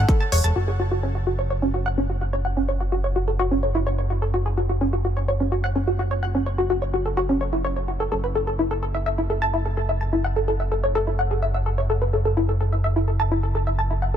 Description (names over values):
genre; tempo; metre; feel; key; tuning
melodic techno; 127 BPM; 4/4; straight; F# minor; A4 = 440 Hz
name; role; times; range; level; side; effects
woody wave-folded pluck; arpeggios; 0.0-14.2 s; C#4 to A5; -24 LUFS; equal; lush chorus, sidechain pumping, dub echo
fat analog bass; bass; 0.0-14.2 s; E1 to F#1; -24 LUFS; equal; tube saturation, sidechain pumping
electronic hi-hat; drums; 0.1-0.5 s; none; -30 LUFS; right 1 dB; none
room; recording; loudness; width
little or no reverb; none; -20 LUFS; side -9 dB against mid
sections
0.6-14.2 A section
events
none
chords
0.0 A5; 0.6 F#5; 8.1 A5/F#